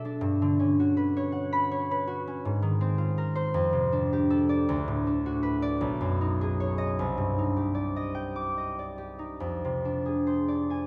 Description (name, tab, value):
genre	classical, solo harp piece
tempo	45-56 BPM (dotted quarters)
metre	6/8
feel	rubato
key	C minor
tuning	A4 = 438 Hz
part	concert harp	solo	0.0-10.9 s	B1 to E6	-28 LUFS	equal	none
room	wet concert hall reverb, RT60 2.4 s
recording	heard from further back in the room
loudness	-28 LUFS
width	mono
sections	0.0-10.9 A section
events	none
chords	0.2 Gmaj7#11; 2.5 Ab69; 3.5 F69; 4.7 D6; 5.8 B69; 7.0 Cmadd9; 9.4 Fm6